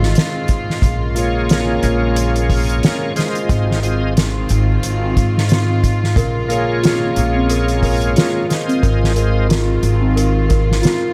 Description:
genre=trip hop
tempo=90 BPM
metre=4/4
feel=swing 57% on 16ths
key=Bb minor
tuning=A4 = 440 Hz
part: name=warm studio string section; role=sustained chords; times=0.0-11.1 s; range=Db3 to F4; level=-25 LUFS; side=equal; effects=none
part: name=upright bass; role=bass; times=0.0-10.8 s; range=Ab1 to Ab2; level=-20 LUFS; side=equal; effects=none
part: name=soft-mallet drum kit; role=drums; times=0.0-11.0 s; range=hi-hat, kick drum, snare drum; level=-21 LUFS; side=equal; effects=none
part: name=bright tonewheel organ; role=accompaniment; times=1.1-9.5 s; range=Ab3 to Eb5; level=-23 LUFS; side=equal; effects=overdrive, chorus vibrato, slow rotary speaker, harmonic tremolo, tape echo
part: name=worn celesta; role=arpeggios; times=6.2-11.1 s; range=C4 to Bb4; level=-24 LUFS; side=equal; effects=vintage 12-bit sampler grit, tape echo
room=light reverb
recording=vinyl crackle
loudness=-16 LUFS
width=mono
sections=0.0-11.1 A section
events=none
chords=0.0 Fm7/Ab; 0.8 Bbm7; 3.5 Fm7/Ab; 6.2 Bbm7; 8.8 Fm7/Ab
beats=0.16 | 0.83 1.50 2.16 2.83 | 3.50 4.16 4.83 5.50 | 6.16 6.83 7.50 8.16 | 8.83 9.50 10.16 10.83

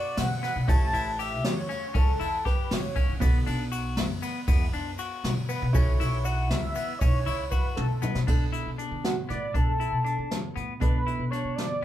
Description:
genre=progressive instrumental, band music in an uneven meter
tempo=237 BPM (eighths)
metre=5/8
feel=straight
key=B minor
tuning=A4 = 439 Hz
part: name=octave-doubled lead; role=melody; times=0.0-3.1, 5.5-11.8 s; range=F#4 to A5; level=-32 LUFS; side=equal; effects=chorus
part: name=hollow-body jazz guitar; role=accompaniment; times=0.0-11.8 s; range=B2 to D5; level=-38 LUFS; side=right 4 dB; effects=none
part: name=semi-hollow electric guitar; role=arpeggios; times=0.0-11.8 s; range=B3 to G4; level=-34 LUFS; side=left 5 dB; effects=none
part: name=upright bass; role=bass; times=0.2-11.8 s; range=A1 to D3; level=-30 LUFS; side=equal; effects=none
part: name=jazz brush drum kit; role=drums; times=0.2-11.7 s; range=crash cymbal, hi-hat, kick drum, ride cymbal, snare drum, toms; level=-27 LUFS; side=equal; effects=none
part: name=tube shaker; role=percussion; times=3.2-8.3 s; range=none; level=-47 LUFS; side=right 6 dB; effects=none
room=moderate studio ambience, RT60 0.5 s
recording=band playing live in one room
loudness=-24 LUFS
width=side -12 dB against mid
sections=0.0-8.3 A section; 8.3-11.8 B section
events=drum fill 7.8-8.3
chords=0.0 Bm7; 0.7 A7; 3.2 Bm7; 5.7 F#m7/B; 8.3 Bm7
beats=0.18 0.43 | 0.68 0.94 1.19 1.44 1.70 | 1.95 2.20 2.46 2.71 2.96 | 3.21 3.47 3.72 3.97 4.23 | 4.48 4.73 4.99 5.24 5.49 | 5.75 6.00 6.25 6.50 6.76 | 7.01 7.26 7.52 7.77 8.03 | 8.28 8.53 8.79 9.04 9.29 | 9.55 9.80 10.05 10.31 10.56 | 10.82 11.07 11.32 11.58 11.83

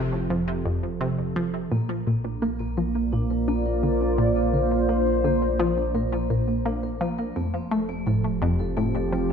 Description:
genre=ambient, sequencer-driven space music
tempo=85 BPM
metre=4/4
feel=straight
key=Bb major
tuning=A4 = 440 Hz
part: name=sweeping resonant pad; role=sustained chords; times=0.0-9.3 s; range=F3 to A5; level=-26 LUFS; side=right 1 dB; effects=chorus
part: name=analog pluck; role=riff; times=0.0-9.3 s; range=F2 to D4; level=-26 LUFS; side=left 1 dB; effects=chorus, tape echo
part: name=warm sub bass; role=bass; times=0.0-9.3 s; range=F1 to Bb1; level=-30 LUFS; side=left 1 dB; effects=none
part: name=vibraphone with medium mallets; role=arpeggios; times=1.7-9.3 s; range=A3 to Bb4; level=-36 LUFS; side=left 2 dB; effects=auto-pan, tape echo
room=moderate concert hall reverb, RT60 1.9 s, digital ambience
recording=none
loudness=-22 LUFS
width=side -7 dB against mid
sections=0.0-1.7 A section; 1.7-9.3 B section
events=fade-in on vibraphone 1.7-9.3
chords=0.0 Fadd9; 1.7 Bb; 7.4 F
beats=0.30 1.01 | 1.71 2.42 3.13 3.83 | 4.54 5.24 5.95 6.66 | 7.36 8.07 8.77

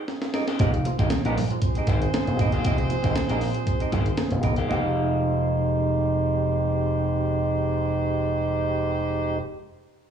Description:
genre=funk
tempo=117 BPM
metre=4/4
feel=straight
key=F minor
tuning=A4 = 438 Hz
part: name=electric guitar through a small old amp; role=accompaniment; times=0.1-9.5 s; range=Eb4 to G5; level=-35 LUFS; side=left 6 dB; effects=plate reverb, slapback echo
part: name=breakbeat sampler-style drum kit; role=drums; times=0.1-4.7 s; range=hi-hat, kick drum, snare drum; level=-25 LUFS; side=equal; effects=none
part: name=percussive tonewheel organ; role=stabs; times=0.3-9.4 s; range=F3 to G4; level=-27 LUFS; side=right 4 dB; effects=stopped rotary speaker, plate reverb, slapback echo
part: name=slap bass with an envelope filter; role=bass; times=0.6-9.4 s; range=F1 to Bb1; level=-25 LUFS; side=left 1 dB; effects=none
part: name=congas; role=percussion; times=0.6-4.9 s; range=none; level=-32 LUFS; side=right 4 dB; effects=slapback echo
part: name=warm horn section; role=second line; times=1.6-9.4 s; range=Ab3 to C5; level=-32 LUFS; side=right 1 dB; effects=plate reverb, slapback echo
room=light reverb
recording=live gig heard through the venue's PA, club reverb, small room ambience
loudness=-22 LUFS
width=side -8 dB against mid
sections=0.6-4.7 A section; 4.7-8.8 B section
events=break 0.0-0.6; drum fill 0.1-0.6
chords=0.0 Fm9 (rootless); 0.6 Fm9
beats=0.08 | 0.60 1.11 1.62 2.13 | 2.65 3.16 3.67 4.18 | 4.70 5.21 5.72 6.23 | 6.75 7.26 7.77 8.29

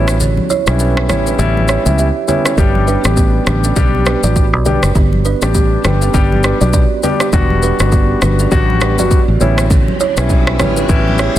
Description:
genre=afrobeats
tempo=101 BPM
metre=4/4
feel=swing 58% on 16ths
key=unclear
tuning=A4 = 440 Hz
part: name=warm grand piano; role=accompaniment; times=0.0-11.4 s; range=G3 to G4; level=-18 LUFS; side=left 5 dB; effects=none
part: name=kalimba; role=riff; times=0.0-11.4 s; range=B3 to E5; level=-19 LUFS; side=right 8 dB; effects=digital delay
part: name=fingered electric bass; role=bass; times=0.0-11.4 s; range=E1 to C#2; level=-15 LUFS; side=equal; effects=none
part: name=afro-pop drum kit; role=drums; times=0.1-11.4 s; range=kick drum, rim click, shaker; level=-16 LUFS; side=equal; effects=soft clipping on snare
part: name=congas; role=percussion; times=0.2-11.2 s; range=none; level=-22 LUFS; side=left 2 dB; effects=none
part: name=riser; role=sound effects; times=9.1-11.4 s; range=none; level=-27 LUFS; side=left 1 dB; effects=none
room=small room ambience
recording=dense, heavily limited modern master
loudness=-10 LUFS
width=side -12 dB against mid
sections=0.0-11.4 A section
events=break 0.0-2.6; riser 9.1-11.4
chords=0.0 A7; 2.6 G; 7.3 Em7; 9.4 A7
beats=| 0.20 0.80 1.39 1.98 | 2.58 3.17 3.77 4.36 | 4.95 5.55 6.14 6.74 | 7.33 7.92 8.52 9.11 | 9.71 10.30 10.89

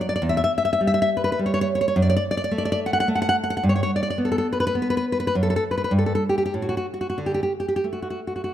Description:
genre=romantic piece for solo classical guitar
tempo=88-108 BPM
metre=3/4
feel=rubato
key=unclear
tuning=A4 = 440 Hz
part: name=nylon-string guitar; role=solo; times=0.0-8.5 s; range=E2 to F#5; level=-20 LUFS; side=equal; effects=none
room=light reverb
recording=dark, warm production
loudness=-20 LUFS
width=side -11 dB against mid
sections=0.0-8.5 A section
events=none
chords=0.2 Em6; 1.9 F#m; 3.6 N.C.; 7.2 D5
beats=| 0.22 0.80 1.38 | 1.95 2.51 3.08 | 3.63 4.19 4.76 | 5.34 5.92 6.54 | 7.19 7.86

